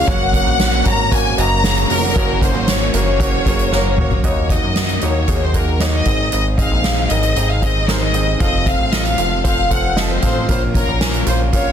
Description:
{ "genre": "piano-driven pop", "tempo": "115 BPM", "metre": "4/4", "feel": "straight", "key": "unclear", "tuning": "A4 = 441 Hz", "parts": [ { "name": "warm studio violin section", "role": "melody", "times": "0.0-11.7 s", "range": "A4 to Bb5", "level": "-19 LUFS", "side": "left 3 dB", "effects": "plate reverb, tape echo" }, { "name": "clear upright piano", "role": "accompaniment", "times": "0.0-11.7 s", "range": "Ab2 to Ab5", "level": "-23 LUFS", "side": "right 2 dB", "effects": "plate reverb" }, { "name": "bright studio string section", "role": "sustained chords", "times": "0.0-11.7 s", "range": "C3 to Bb4", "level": "-32 LUFS", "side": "left 1 dB", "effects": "none" }, { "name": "picked steel-string acoustic guitar", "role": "riff", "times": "0.0-4.3 s", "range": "Gb2 to Gb4", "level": "-25 LUFS", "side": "right 9 dB", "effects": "none" }, { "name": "chorused synth bass", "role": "bass", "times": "0.0-11.7 s", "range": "F1 to Gb2", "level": "-20 LUFS", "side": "equal", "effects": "none" }, { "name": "soft-mallet drum kit", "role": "drums", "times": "0.1-11.7 s", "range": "hi-hat, kick drum, snare drum, toms", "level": "-19 LUFS", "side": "equal", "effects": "none" } ], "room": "light reverb", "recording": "dense, heavily limited modern master", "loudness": "-14 LUFS", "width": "side -9 dB against mid", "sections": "0.0-4.2 A section; 4.2-11.7 B section", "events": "drum fill 3.7-4.2", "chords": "0.1 Gb; 4.2 Ebm; 6.1 Ab; 8.4 F; 10.5 Bbm", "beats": "| 0.07 0.59 1.11 1.64 | 2.16 2.68 3.20 3.72 | 4.24 4.76 5.28 5.80 | 6.32 6.84 7.36 7.88 | 8.40 8.93 9.45 9.97 | 10.49 11.01 11.53" }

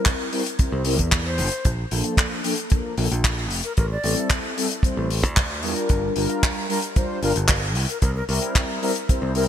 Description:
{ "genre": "nu-disco, nu disco", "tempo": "113 BPM", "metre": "4/4", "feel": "straight", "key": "unclear", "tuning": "A4 = 440 Hz", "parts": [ { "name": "mellow synth brass", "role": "accompaniment", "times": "0.0-9.4 s", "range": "F3 to C5", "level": "-26 LUFS", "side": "left 1 dB", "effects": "chorus, sidechain pumping, ping-pong delay" }, { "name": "damped 70s drum kit", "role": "drums", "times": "0.1-9.5 s", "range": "handclaps, hi-hat", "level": "-25 LUFS", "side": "left 1 dB", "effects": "gated reverb" }, { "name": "kick drum", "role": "drums", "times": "0.1-9.2 s", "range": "none", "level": "-20 LUFS", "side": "equal", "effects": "none" }, { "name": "modern bright picked electric bass", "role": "bass", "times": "0.7-9.5 s", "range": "F1 to E2", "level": "-24 LUFS", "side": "equal", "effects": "sidechain pumping" }, { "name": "breathy hollow jazz flute", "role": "melody", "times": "1.3-4.3, 7.9-8.4 s", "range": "Bb4 to D5", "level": "-33 LUFS", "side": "left 1 dB", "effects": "ping-pong delay" } ], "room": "light reverb, small room ambience", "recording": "bright 1980s-style digital production", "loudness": "-20 LUFS", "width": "side -10 dB against mid", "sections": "0.0-9.5 A section", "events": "none", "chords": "0.0 C7; 1.7 Bbmaj7; 3.8 Am7; 5.9 Gm7; 7.8 C7", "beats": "0.06 0.59 1.12 | 1.65 2.18 2.71 3.24 | 3.77 4.31 4.84 5.37 | 5.90 6.43 6.96 7.49 | 8.02 8.55 9.09" }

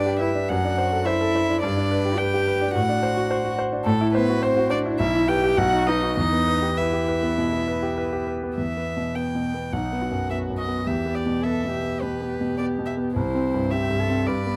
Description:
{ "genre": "quick classical-period movement for piano trio", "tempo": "105 BPM", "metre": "4/4", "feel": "rubato", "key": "E minor from 3.9 s", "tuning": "A4 = 440 Hz", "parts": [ { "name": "rich violin", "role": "melody", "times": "0.0-14.6 s", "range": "A4 to G5", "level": "-29 LUFS", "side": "equal", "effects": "none" }, { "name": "dark cello", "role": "second line", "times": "0.0-14.6 s", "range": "A3 to B4", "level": "-30 LUFS", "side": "equal", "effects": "none" }, { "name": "clear concert grand piano", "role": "accompaniment", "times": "0.0-14.6 s", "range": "B1 to C5", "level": "-26 LUFS", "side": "equal", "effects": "none" } ], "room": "light reverb", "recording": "close, detailed microphones", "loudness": "-23 LUFS", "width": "mono", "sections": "0.0-8.6 A section; 8.6-14.6 B section", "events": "none", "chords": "0.5 D7/F#; 1.6 G; 2.7 D7/A; 3.9 F#m7b5/A; 5.0 Em/B; 5.6 B; 6.2 Em; 9.7 B5; 10.9 Em; 13.2 C", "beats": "0.49 1.06 | 1.63 2.19 2.75 3.30 | 3.86 4.43 5.00 5.58 | 6.17 6.78 7.38 7.98 | 8.57 9.15 9.73 10.31 | 10.88 11.45 12.02 12.59 | 13.16 13.72 14.28" }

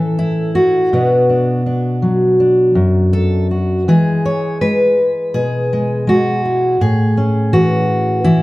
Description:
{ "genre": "folk, solo fingerstyle acoustic guitar", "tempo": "82 BPM", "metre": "4/4", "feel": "straight", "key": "unclear", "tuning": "A4 = 440 Hz", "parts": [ { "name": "fingerpicked steel-string acoustic guitar", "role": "solo", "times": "0.0-8.4 s", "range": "F#2 to C#5", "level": "-12 LUFS", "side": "equal", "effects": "none" } ], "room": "moderate large studio reverb, RT60 1.3 s", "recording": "dark, warm production", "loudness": "-12 LUFS", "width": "side -19 dB against mid", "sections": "0.0-3.9 A section; 3.9-8.4 B section", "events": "none", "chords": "0.0 A; 0.9 Bm; 3.9 E; 6.8 A", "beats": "0.20 | 0.93 1.66 2.39 3.13 | 3.88 4.61 5.34 6.08 | 6.80 7.53 8.25" }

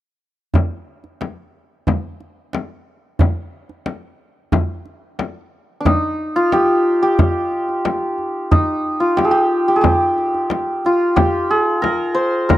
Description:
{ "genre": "Persian modal ensemble", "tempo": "90 BPM", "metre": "4/4", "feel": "straight", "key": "unclear", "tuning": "A4 = 440 Hz", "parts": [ { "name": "tombak", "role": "percussion", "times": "0.5-12.6 s", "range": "none", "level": "-18 LUFS", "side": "right 2 dB", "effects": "none" }, { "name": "frame drum", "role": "percussion", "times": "0.6-12.6 s", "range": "none", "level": "-20 LUFS", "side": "left 5 dB", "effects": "none" }, { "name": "santur", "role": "melody", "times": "5.8-12.6 s", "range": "D4 to C5", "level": "-16 LUFS", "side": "equal", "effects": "none" } ], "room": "small room reverb", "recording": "dry, close 1970s-style studio recording", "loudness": "-15 LUFS", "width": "side -14 dB against mid", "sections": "0.5-5.9 A section; 5.9-12.6 B section", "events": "none", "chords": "none", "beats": "| 0.54 1.21 1.87 2.54 | 3.20 3.87 4.53 5.20 | 5.86 6.53 7.19 7.86 | 8.52 9.18 9.85 10.51 | 11.18 11.84 12.51" }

